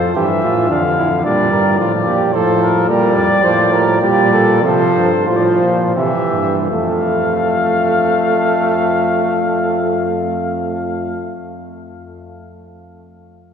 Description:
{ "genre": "classical, imitative canzona for brass ensemble", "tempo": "76-111 BPM", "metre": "3/4", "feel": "straight", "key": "F major", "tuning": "A4 = 441 Hz", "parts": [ { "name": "dark trumpet", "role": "melody", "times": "0.0-11.4 s", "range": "Bb4 to F5", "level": "-19 LUFS", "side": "left 5 dB", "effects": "none" }, { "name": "mellow flugelhorn", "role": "second line", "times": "0.0-11.3 s", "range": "D4 to D5", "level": "-19 LUFS", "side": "right 2 dB", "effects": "none" }, { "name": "bright trombone", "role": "accompaniment", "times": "0.0-11.4 s", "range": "D3 to A3", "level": "-18 LUFS", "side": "right 2 dB", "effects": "none" }, { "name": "bright bass trombone", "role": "bass", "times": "0.0-11.4 s", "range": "F2 to C3", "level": "-20 LUFS", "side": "right 1 dB", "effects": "none" } ], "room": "wet cathedral reverb, RT60 5.9 s", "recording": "recorded in a church or concert hall", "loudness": "-13 LUFS", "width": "side -7 dB against mid", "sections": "0.0-6.7 A section; 6.7-11.4 B section", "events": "slowing down 2.1-6.7", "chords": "0.0 F; 0.7 Dm/F; 1.2 Bb; 2.3 F/A; 2.9 Bb; 4.0 Gm/Bb; 4.6 F; 6.0 C; 6.7 F", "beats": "0.16 0.70 | 1.25 1.79 2.33 | 2.88 3.44 4.01 | 4.62 5.26 5.96 | 6.71 7.49 8.28 | 9.07 9.85 10.64" }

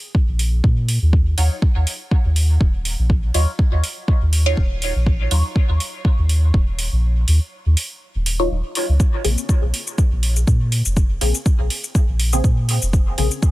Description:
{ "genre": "dub techno", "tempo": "122 BPM", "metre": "4/4", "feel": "swing 55% on 16ths", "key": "Bb minor", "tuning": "A4 = 440 Hz", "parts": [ { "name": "electronic kick drum", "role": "drums", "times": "0.1-13.5 s", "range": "none", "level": "-16 LUFS", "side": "equal", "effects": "overdrive" }, { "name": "soft dub sub bass", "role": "bass", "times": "0.3-13.3 s", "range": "Eb1 to Bb2", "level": "-17 LUFS", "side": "equal", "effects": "tube saturation, sidechain pumping" }, { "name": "electronic hi-hat and shaker", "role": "drums", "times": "0.4-13.5 s", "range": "none", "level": "-26 LUFS", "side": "right 1 dB", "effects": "overdrive" }, { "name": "filtered dub chord stab", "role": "stabs", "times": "1.4-13.4 s", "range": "Db3 to Db5", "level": "-26 LUFS", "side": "left 1 dB", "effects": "phaser, sidechain pumping, dub echo" } ], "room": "little or no reverb", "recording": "none", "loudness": "-16 LUFS", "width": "side -18 dB against mid", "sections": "0.0-9.0 A section; 9.0-13.5 A section", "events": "kick drops out 7.0-9.0", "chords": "0.0 N.C.; 1.1 Ebm9; 9.0 Bbm9", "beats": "0.15 0.64 | 1.13 1.62 2.11 2.61 | 3.10 3.59 4.08 4.57 | 5.07 5.56 6.05 6.54 | 7.03 7.52 8.02 8.51 | 9.00 9.49 9.98 10.47 | 10.97 11.46 11.95 12.44 | 12.93 13.43" }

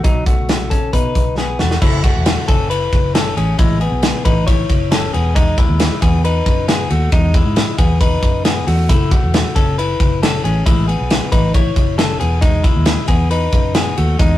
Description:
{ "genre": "jangly indie pop", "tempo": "136 BPM", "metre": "4/4", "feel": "straight", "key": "E major", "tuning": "A4 = 440 Hz", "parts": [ { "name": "direct-recorded clean electric guitar", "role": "arpeggios", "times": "0.0-14.4 s", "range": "F#3 to C#5", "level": "-20 LUFS", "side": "left 3 dB", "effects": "none" }, { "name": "vintage muted fingered electric bass", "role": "bass", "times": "0.0-14.4 s", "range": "E1 to B2", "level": "-18 LUFS", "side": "equal", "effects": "none" }, { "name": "modern studio drum kit", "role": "drums", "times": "0.0-14.3 s", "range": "crash cymbal, hi-hat, kick drum, ride cymbal, snare drum", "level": "-15 LUFS", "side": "equal", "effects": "none" } ], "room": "light reverb", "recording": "rough rehearsal-room recording, warm saturation, vinyl crackle", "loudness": "-13 LUFS", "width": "side -14 dB against mid", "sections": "0.0-1.8 A section; 1.8-14.4 B section", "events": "drum fill 1.4-1.8", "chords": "0.0 Badd9; 1.8 F#m7; 3.4 Amaj7; 5.1 Emaj7; 8.9 F#m7; 10.4 Amaj7; 12.2 Emaj7", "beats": "| 0.04 0.49 0.93 1.38 | 1.82 2.27 2.71 3.15 | 3.60 4.04 4.48 4.92 | 5.36 5.80 6.25 6.69 | 7.13 7.57 8.01 8.45 | 8.89 9.34 9.78 10.22 | 10.66 11.10 11.54 11.99 | 12.43 12.87 13.31 13.75 | 14.20" }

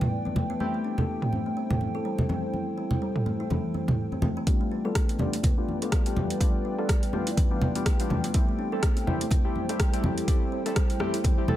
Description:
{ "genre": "afro house", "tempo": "124 BPM", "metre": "4/4", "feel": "swing 57% on 16ths", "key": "A minor", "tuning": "A4 = 440 Hz", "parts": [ { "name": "dark analog pad", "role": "sustained chords", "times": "0.0-11.6 s", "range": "E4 to G5", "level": "-35 LUFS", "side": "right 1 dB", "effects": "chorus, sidechain pumping" }, { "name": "warm analog keys", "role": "stabs", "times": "0.0-11.6 s", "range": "G3 to A4", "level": "-33 LUFS", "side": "left 2 dB", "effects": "chorus, sidechain pumping, low-pass filter, dub echo" }, { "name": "deep house drum kit", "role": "drums", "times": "0.0-11.4 s", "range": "hi-hat, rim click, toms", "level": "-32 LUFS", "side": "right 1 dB", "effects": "overdrive, high-pass filter on toms, high-pass filter on hats, high-pass filter on snare" }, { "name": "congas", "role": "percussion", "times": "0.0-11.6 s", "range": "none", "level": "-30 LUFS", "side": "equal", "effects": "none" }, { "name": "kalimba", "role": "arpeggios", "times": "0.3-11.6 s", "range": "E3 to A4", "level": "-32 LUFS", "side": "equal", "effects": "sidechain pumping, dub echo" }, { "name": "electronic kick drum", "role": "drums", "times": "4.5-11.4 s", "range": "none", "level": "-24 LUFS", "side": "equal", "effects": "none" } ], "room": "light reverb", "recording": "none", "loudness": "-24 LUFS", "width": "side -13 dB against mid", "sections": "0.0-4.5 A section; 4.5-11.6 B section", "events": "build-up 4.5-11.6; drum fill 4.5-11.6; filter sweep on synth keys 4.5-11.6", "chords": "0.0 G7; 0.6 Am7; 4.5 G7; 8.3 Am7", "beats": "0.12 | 0.60 1.09 1.57 2.05 | 2.54 3.02 3.50 3.99 | 4.47 4.96 5.44 5.92 | 6.41 6.89 7.38 7.86 | 8.34 8.83 9.31 9.79 | 10.28 10.76 11.25" }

